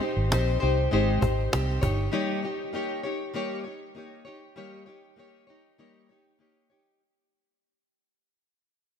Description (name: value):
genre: indie pop, bedroom pop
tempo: 99 BPM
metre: 4/4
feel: straight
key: unclear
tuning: A4 = 442 Hz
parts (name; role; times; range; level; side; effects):
- fingerpicked plugged-in steel-string acoustic guitar; accompaniment; 0.0-7.0 s; G3 to Db5; -28 LUFS; left 2 dB; wide subtle chorus, vibrato effect
- cajon; drums; 0.0-2.0 s; none; -32 LUFS; right 1 dB; none
- vintage muted fingered electric bass; bass; 0.2-2.1 s; G1 to C2; -26 LUFS; right 1 dB; none
room: light reverb, small room ambience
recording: bright 1980s-style digital production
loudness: -24 LUFS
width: side -8 dB against mid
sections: 0.0-7.0 A section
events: fade-out 0.0-7.0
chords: 0.0 Abmaj7; 1.8 Eb7/G